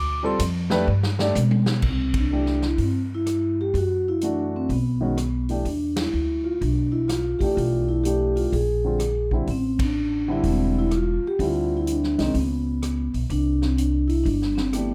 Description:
jazz, small-group swing and bop; 126 BPM; 4/4; swing 66% on 8ths; C major; A4 = 440 Hz
vibraphone with soft mallets; melody; 0.0-14.9 s; B3 to D6; -26 LUFS; equal
upright bass; bass; 0.0-14.9 s; E1 to B2; -27 LUFS; equal
dark baby grand piano; accompaniment; 0.2-14.9 s; D3 to D5; -29 LUFS; equal
swinging big-band drum kit; drums; 0.4-14.9 s; crash cymbal, hi-hat, kick drum, ride cymbal, rim click, snare drum, toms; -31 LUFS; equal
little or no reverb; close, detailed microphones; -23 LUFS; mono
0.0-1.8 A section; 1.8-14.9 B section
vibraphone solo 0.0-1.8; drum fill 0.9-1.8; band accent 2.1, 5.9, 9.7
0.0 Dm7; 0.9 G; 1.8 C; 3.7 Dadd9/F#; 4.7 B7; 5.7 G13; 8.5 Bb9; 9.5 Am7; 11.4 Cadd9; 12.3 Bsus2; 13.3 C

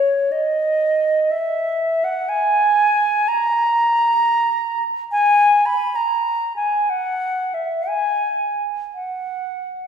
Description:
classical, free, expressive piece for unaccompanied flute; 56-71 BPM; 3/4; rubato; A4 = 441 Hz
concert flute; solo; 0.0-9.9 s; C#5 to B5; -17 LUFS; right 1 dB
wet recital hall reverb, RT60 1.7 s; recorded in a church or concert hall; -17 LUFS; side -7 dB against mid
0.0-9.9 A section

